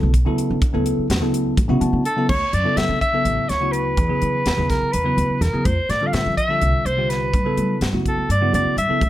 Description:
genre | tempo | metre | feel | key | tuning
electric jazz fusion | 250 BPM (eighths) | 7/8 | straight | D major | A4 = 440 Hz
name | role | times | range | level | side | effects
bell-like tine electric piano | accompaniment | 0.0-9.0 s | C#3 to A5 | -22 LUFS | equal | phaser
upright bass | bass | 0.0-9.1 s | A1 to G3 | -23 LUFS | equal | none
crisp fusion drum kit | drums | 0.1-9.1 s | crash cymbal, hi-hat, kick drum, snare drum | -24 LUFS | equal | none
warm soprano saxophone | melody | 2.1-9.1 s | A4 to F5 | -21 LUFS | equal | slapback echo
room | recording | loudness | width
light reverb | none | -17 LUFS | side -14 dB against mid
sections
0.0-2.3 A section; 2.3-9.1 B section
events
tine electric piano fill 1.6-2.3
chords
0.0 Dmaj9; 4.0 Emaj9; 5.7 Fmaj9; 7.3 Gmaj9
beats
0.14 0.38 | 0.61 0.85 1.09 1.33 1.57 1.81 2.05 | 2.29 2.53 2.77 3.01 3.25 3.49 3.73 | 3.97 4.21 4.45 4.69 4.93 5.17 5.41 | 5.65 5.89 6.13 6.37 6.61 6.85 7.09 | 7.33 7.57 7.81 8.05 8.29 8.53 8.77 | 9.01

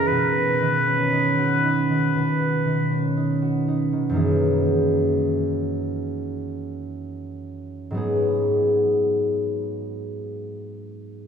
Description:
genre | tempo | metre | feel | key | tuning
classical, impressionist duo for oboe and harp | 58-66 BPM | 4/4 | rubato | unclear | A4 = 441 Hz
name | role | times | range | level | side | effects
clear oboe | melody | 0.0-3.2 s | B4 | -24 LUFS | left 2 dB | none
concert harp | accompaniment | 0.0-11.3 s | F#2 to G#4 | -21 LUFS | equal | none
room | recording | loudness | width
wet church reverb, RT60 3.6 s | heard from further back in the room | -20 LUFS | side -7 dB against mid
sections
0.0-4.2 A section; 4.2-11.3 B section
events
none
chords
0.1 Badd9; 4.2 F#13; 8.0 G#m7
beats
| 0.09 1.12 2.15 3.16 | 4.17 5.13 6.07 7.03 | 7.97 8.90 9.82 10.74

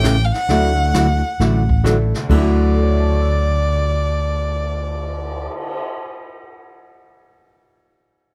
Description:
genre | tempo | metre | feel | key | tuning
country, western swing | 133 BPM | 4/4 | swing 66% on 8ths | D major | A4 = 438 Hz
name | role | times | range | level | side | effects
clear fiddle | melody | 0.0-5.5 s | D5 to G5 | -25 LUFS | equal | none
archtop guitar, miked and amplified | accompaniment | 0.0-5.8 s | C#3 to G4 | -24 LUFS | equal | none
bright upright piano | accompaniment | 0.0-6.5 s | D2 to A6 | -28 LUFS | equal | none
sustaining fretless electric bass | bass | 0.0-5.5 s | A1 to D2 | -20 LUFS | equal | none
jazz brush drum kit | drums | 0.0-5.8 s | brushed snare drum, crash cymbal, cymbal swell, hi-hat, kick drum, snare drum | -26 LUFS | equal | none
room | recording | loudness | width
light reverb | none | -18 LUFS | mono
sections
0.0-2.3 A section; 2.3-5.9 B section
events
none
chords
0.5 Dadd9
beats
0.04 | 0.49 0.94 1.40 1.85 | 2.30 2.75 3.20 3.65 | 4.11 4.56 5.01 5.46

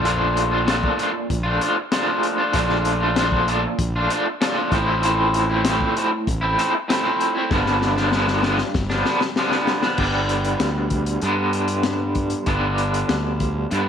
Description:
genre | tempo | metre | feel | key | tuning
psychedelic rock | 97 BPM | 4/4 | straight | unclear | A4 = 440 Hz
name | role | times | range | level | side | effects
electric guitar through a small old amp | riff | 0.0-13.9 s | G2 to F4 | -20 LUFS | equal | tremolo
fuzz fingered electric bass | bass | 0.0-13.9 s | G1 to G2 | -24 LUFS | equal | overdrive
crunchy breakbeat drum kit | drums | 0.1-13.9 s | crash cymbal, hi-hat, kick drum, snare drum | -25 LUFS | left 3 dB | none
room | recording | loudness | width
light reverb, studio reverb | 1960s-style stereo | -18 LUFS | side -8 dB against mid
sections
0.0-10.0 A section; 10.0-13.9 B section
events
drum fill 7.5-10.0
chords
0.0 Bbmaj7; 4.7 Fmaj7/A; 7.5 G7; 10.0 G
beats
| 0.05 0.68 1.30 1.92 | 2.54 3.17 3.79 4.41 | 5.03 5.65 6.27 6.89 | 7.51 8.13 8.75 9.37 | 9.99 10.61 11.23 11.85 | 12.47 13.09 13.71

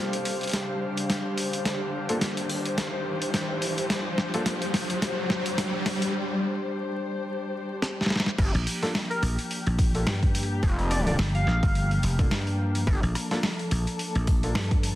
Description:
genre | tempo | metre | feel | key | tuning
glitch hop | 107 BPM | 4/4 | swing 57% on 16ths | G minor | A4 = 440 Hz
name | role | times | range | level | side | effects
dark chamber string section | sustained chords | 0.0-15.0 s | F3 to C5 | -32 LUFS | left 2 dB | vintage 12-bit sampler grit, sidechain pumping, low-pass filter
riser | sound effects | 0.0-6.1 s | none | -32 LUFS | equal | none
airy breathy pad | texture | 0.0-6.1 s | G4 to F5 | -38 LUFS | right 1 dB | chorus, sidechain pumping
boom bap sampler-style drum kit | drums | 0.1-15.0 s | crash cymbal, hi-hat, rim click, snare drum | -30 LUFS | equal | none
warm concert grand piano | stabs | 2.1-4.4, 8.8-14.5 s | Bb3 to A4 | -34 LUFS | equal | vintage 12-bit sampler grit, sidechain pumping, dub echo
gritty driven synth bass | bass | 8.4-13.0 s | F1 to G1 | -26 LUFS | equal | tube saturation
electronic kick drum | drums | 8.4-14.8 s | none | -24 LUFS | equal | none
dry thumbed slap bass | bass | 8.5-15.0 s | F1 to G2 | -26 LUFS | equal | none
sync lead | melody | 9.1-11.9 s | Bb4 to F5 | -33 LUFS | equal | chorus, dub echo
room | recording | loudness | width
moderate digital room reverb, RT60 1.4 s | dense, heavily limited modern master, vinyl crackle | -24 LUFS | side -14 dB against mid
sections
0.0-8.4 A section; 8.4-15.0 B section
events
build-up 0.0-8.4; drum fill 0.0-6.1, 7.8-8.4; riser 0.0-6.1; drop 8.4-15.0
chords
0.0 G7(no3); 8.4 Gm7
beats
0.53 1.09 | 1.66 2.22 2.78 3.34 | 3.90 4.46 5.02 5.58 | 6.14 6.70 7.26 7.82 | 8.38 8.95 9.51 10.07 | 10.63 11.19 11.75 12.31 | 12.87 13.43 13.99 14.55

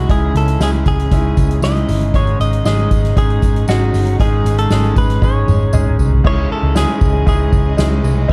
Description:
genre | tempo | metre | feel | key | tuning
piano-driven pop | 117 BPM | 4/4 | straight | C# minor | A4 = 439 Hz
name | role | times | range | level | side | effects
direct-recorded clean electric guitar | melody | 0.0-7.8 s | F#4 to D#5 | -24 LUFS | equal | none
clear concert grand piano | accompaniment | 0.0-8.3 s | G#2 to B4 | -23 LUFS | equal | none
warm studio string section | sustained chords | 0.0-8.3 s | G#2 to D#5 | -31 LUFS | equal | none
vintage muted picked electric bass | bass | 0.0-8.3 s | G1 to C#2 | -18 LUFS | equal | none
soft-mallet drum kit | drums | 0.1-8.3 s | crash cymbal, hi-hat, kick drum, ride cymbal, snare drum, toms | -19 LUFS | equal | none
tambourine | percussion | 0.1-8.3 s | none | -42 LUFS | equal | none
room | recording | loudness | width
light reverb, studio ambience | dark, warm production | -14 LUFS | mono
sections
0.0-6.2 A section; 6.2-8.3 B section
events
drum fill 5.2-6.2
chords
0.0 C#madd9; 2.1 G#sus4; 6.2 C#madd9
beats
| 0.09 0.61 1.12 1.63 | 2.15 2.66 3.17 3.68 | 4.20 4.71 5.22 5.73 | 6.25 6.76 7.27 7.78 | 8.30

